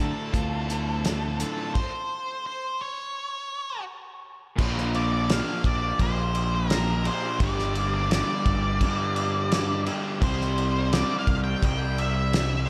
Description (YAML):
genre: classic rock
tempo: 85 BPM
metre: 4/4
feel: straight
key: unclear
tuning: A4 = 440 Hz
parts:
  - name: octave-fuzz lead guitar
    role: melody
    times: 0.0-12.7 s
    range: A4 to G5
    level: -32 LUFS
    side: equal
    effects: distortion
  - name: raw garage guitar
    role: riff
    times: 0.0-12.7 s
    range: D2 to C5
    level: -37 LUFS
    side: equal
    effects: overdrive, slapback echo
  - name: raw garage guitar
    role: riff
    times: 0.0-12.7 s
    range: D2 to F4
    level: -35 LUFS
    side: equal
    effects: overdrive
  - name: growling fingered electric bass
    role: bass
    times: 0.0-12.7 s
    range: G1 to D3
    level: -30 LUFS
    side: equal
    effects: overdrive
  - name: cloth-damped thuddy drum kit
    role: drums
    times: 0.3-12.5 s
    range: crash cymbal, hi-hat, kick drum, snare drum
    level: -30 LUFS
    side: equal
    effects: none
room: light reverb, small room ambience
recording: none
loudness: -26 LUFS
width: mono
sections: 0.0-4.6 A section; 4.6-12.7 B section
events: stop 1.8-4.6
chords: 0.0 Dm; 1.8 N.C.; 4.6 Bb; 7.4 Gm; 10.2 C5